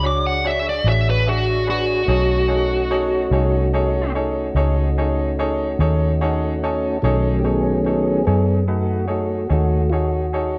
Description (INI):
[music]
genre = slow blues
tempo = 48 BPM (dotted quarters)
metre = 12/8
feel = straight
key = B mixolydian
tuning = A4 = 441 Hz
[part]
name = dark smooth lead guitar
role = melody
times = 0.0-4.1 s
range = F#4 to D6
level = -23 LUFS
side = equal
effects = overdrive
[part]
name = bright concert grand piano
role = accompaniment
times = 0.0-10.6 s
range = D4 to A5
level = -27 LUFS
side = equal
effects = none
[part]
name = tonewheel organ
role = sustained chords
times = 0.0-10.6 s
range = D#3 to C#5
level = -26 LUFS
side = equal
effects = slow rotary speaker, overdrive
[part]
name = vintage muted fingered electric bass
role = bass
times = 0.0-10.6 s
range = A1 to F#2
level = -23 LUFS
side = equal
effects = none
[sound]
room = light reverb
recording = worn, warbling old tape, cassette tape, warbly pitch drift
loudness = -19 LUFS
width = mono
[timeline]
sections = 0.0-7.0 A section; 7.0-10.6 A section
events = lead electric guitar solo 0.0-7.0; grand piano fill 5.8-7.0; tonewheel organ solo 7.0-10.6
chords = 0.0 E13; 2.1 B13